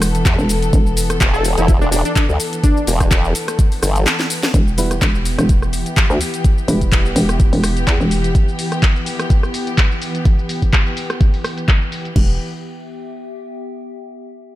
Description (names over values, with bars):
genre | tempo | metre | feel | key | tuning
bass house | 126 BPM | 4/4 | swing 55% on 16ths | E minor | A4 = 441 Hz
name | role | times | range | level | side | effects
dark chamber string section | sustained chords | 0.0-12.4 s | E3 to A4 | -24 LUFS | left 1 dB | sidechain pumping
hollow knocking FM bass | bass | 0.0-1.2, 4.5-8.3, 12.2-12.4 s | E1 to E2 | -18 LUFS | equal | sidechain pumping
garage drum kit | drums | 0.0-12.3 s | crash cymbal, handclaps, hi-hat, rim click, shaker, snare drum | -21 LUFS | left 1 dB | low-pass filter on hats, studio reverb, low-pass filter on perc, low-pass filter on snare, low-pass filter on cymbals
formant-sweep wobble bass | bass | 0.3-4.1 s | E1 to E2 | -17 LUFS | equal | chorus, overdrive, sidechain pumping
electronic kick drum | drums | 0.3-12.3 s | none | -14 LUFS | equal | studio reverb
plucky unison lead | melody | 1.3-3.1 s | D4 to A4 | -23 LUFS | left 1 dB | dub echo
warbly tape-like pad | texture | 4.5-14.0 s | B3 to G5 | -32 LUFS | equal | chorus, built-in reverb, sidechain pumping
dark baby grand piano | stabs | 4.8-8.6 s | G3 to B4 | -26 LUFS | right 3 dB | sidechain pumping, dub echo
room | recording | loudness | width
little or no reverb | none | -14 LUFS | side -15 dB against mid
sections
0.0-4.5 A section; 4.5-12.2 B section; 12.2-14.1 C section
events
drop 0.0-4.5; drum fill 4.1-4.5; fade-out on ambient pad 4.5-12.2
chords
0.0 E5; 4.5 Em